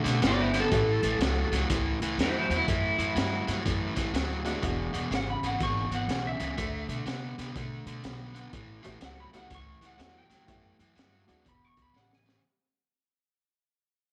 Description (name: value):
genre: electric blues shuffle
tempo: 123 BPM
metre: 4/4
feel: swing 64% on 8ths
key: A mixolydian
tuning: A4 = 437 Hz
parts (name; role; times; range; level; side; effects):
- overdriven electric guitar; riff; 0.0-12.4 s; E2 to B3; -35 LUFS; equal; none
- upright bass; bass; 0.0-12.3 s; E1 to C3; -36 LUFS; equal; none
- crunchy breakbeat drum kit; drums; 0.1-12.4 s; hi-hat, kick drum, snare drum; -36 LUFS; equal; none
- electric guitar at the edge of break-up; melody; 0.3-12.4 s; E4 to C#6; -33 LUFS; equal; lush chorus
- tack piano; accompaniment; 0.7-1.0, 4.4-5.4, 8.8-11.4 s; G#3 to G4; -40 LUFS; equal; none
room: light reverb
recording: none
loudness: -29 LUFS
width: mono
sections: 0.0-12.4 A section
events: fade-out 0.0-12.4; drum fill 11.9-12.4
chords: 0.0 D7(no3); 0.7 A7; 4.6 E7; 6.6 D5; 8.5 A7; 11.5 E5